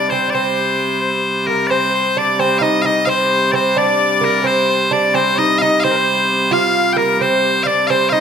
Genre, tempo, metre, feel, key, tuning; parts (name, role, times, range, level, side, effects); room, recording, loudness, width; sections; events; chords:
medieval; 87 BPM (dotted quarters); 6/8; straight; C minor; A4 = 440 Hz
loud bright bagpipes; melody; 0.0-8.2 s; Bb4 to G5; -16 LUFS; equal
edgy shawm; second line; 0.0-8.2 s; Bb4 to F5; -21 LUFS; left 6 dB
lute; second line; 0.0-8.2 s; Bb3 to F4; -19 LUFS; right 4 dB
clear hurdy-gurdy; drone; 0.0-8.2 s; C3 to G3; -22 LUFS; right 1 dB
moderate recital hall reverb, RT60 1.7 s; -13 LUFS; side -7 dB against mid
0.0-1.7 A section; 1.7-8.2 B section